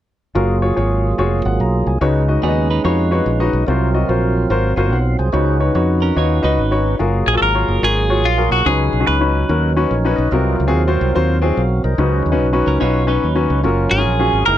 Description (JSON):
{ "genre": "uptempo gospel", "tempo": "144 BPM", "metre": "4/4", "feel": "swing 65% on 8ths", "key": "F# major", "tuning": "A4 = 440 Hz", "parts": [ { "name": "clear baby grand piano", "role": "accompaniment", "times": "0.3-14.6 s", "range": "B#2 to A#5", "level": "-19 LUFS", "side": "left 4 dB", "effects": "none" }, { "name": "tonewheel organ", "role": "sustained chords", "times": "0.4-14.6 s", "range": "E#3 to G#5", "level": "-21 LUFS", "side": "right 3 dB", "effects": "fast rotary speaker, overdrive" }, { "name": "fingered electric bass", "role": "bass", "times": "0.4-14.6 s", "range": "E#1 to E#2", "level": "-17 LUFS", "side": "equal", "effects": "none" }, { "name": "clean electric guitar", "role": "second line", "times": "2.4-3.5, 6.0-7.0, 12.7-13.6 s", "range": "B3 to C#5", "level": "-25 LUFS", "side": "right 8 dB", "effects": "none" }, { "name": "clean electric guitar", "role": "melody", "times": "7.3-9.7, 13.9-14.6 s", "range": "E#4 to B4", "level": "-17 LUFS", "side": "equal", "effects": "phaser" } ], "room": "little or no reverb", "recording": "dry, close 1970s-style studio recording", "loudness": "-14 LUFS", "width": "side -12 dB against mid", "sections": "0.4-7.0 A section; 7.0-14.6 B section", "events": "none", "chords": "0.4 F#maj9; 2.0 C#9sus4; 3.7 G#13; 5.3 C#9sus4; 7.0 F#maj9; 8.7 C#9sus4; 10.3 G#13/B#; 12.0 C#9sus4; 13.6 F#maj7" }